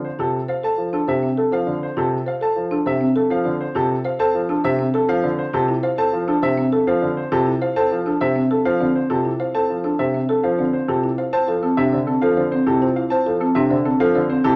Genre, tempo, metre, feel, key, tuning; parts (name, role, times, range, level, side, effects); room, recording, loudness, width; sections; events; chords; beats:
classical, minimalist pattern music; 101 BPM; 3/4; straight; D minor; A4 = 440 Hz
clear concert grand piano; melody; 0.0-14.6 s; A4 to A5; -28 LUFS; equal
warm baby grand piano; accompaniment; 0.0-14.6 s; C3 to C4; -25 LUFS; equal
folk marimba with soft mallets; arpeggios; 0.2-14.6 s; C4 to C5; -23 LUFS; equal
moderate large studio reverb, RT60 1.2 s; -20 LUFS; mono
0.0-11.3 A section; 11.3-14.6 B section
0.0 Dm7
0.04 | 0.64 1.23 1.82 | 2.42 3.01 3.61 | 4.20 4.79 5.39 | 5.98 6.58 7.17 | 7.76 8.36 8.95 | 9.55 10.14 10.73 | 11.33 11.92 12.52 | 13.11 13.71 14.30